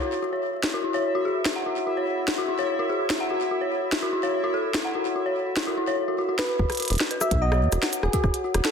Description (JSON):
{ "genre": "IDM", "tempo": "146 BPM", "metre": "4/4", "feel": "straight", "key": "unclear", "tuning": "A4 = 440 Hz", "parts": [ { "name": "dark detuned synth bell", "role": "arpeggios", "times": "0.0-8.7 s", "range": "E4 to F#5", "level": "-26 LUFS", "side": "left 2 dB", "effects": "chorus, low-pass filter, digital delay" }, { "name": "bubbling stepped-filter texture", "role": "texture", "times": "0.3-6.6 s", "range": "E4 to E5", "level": "-33 LUFS", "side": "right 1 dB", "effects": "chorus, built-in reverb" }, { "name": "glitchy drum kit", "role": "drums", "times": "0.6-8.7 s", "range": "cabasa, hi-hat, rim click, snare drum", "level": "-28 LUFS", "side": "equal", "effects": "soft clipping on snare, digital delay" }, { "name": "soft struck synth lead", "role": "melody", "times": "6.4-8.7 s", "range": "G#4 to E5", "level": "-28 LUFS", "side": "right 1 dB", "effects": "chorus, digital delay" }, { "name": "deep acid bass", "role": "bass", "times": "6.6-8.6 s", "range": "E1 to E2", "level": "-23 LUFS", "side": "equal", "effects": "none" }, { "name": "electronic kick drum", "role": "drums", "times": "6.6-8.3 s", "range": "none", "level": "-26 LUFS", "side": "equal", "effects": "none" } ], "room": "wet plate reverb, RT60 1.2 s, digital ambience", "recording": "dense, heavily limited modern master", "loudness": "-22 LUFS", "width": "side -6 dB against mid", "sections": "0.0-6.6 A section; 6.6-8.7 B section", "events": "none", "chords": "0.0 E; 3.3 F#m7; 6.6 F#7(no3)" }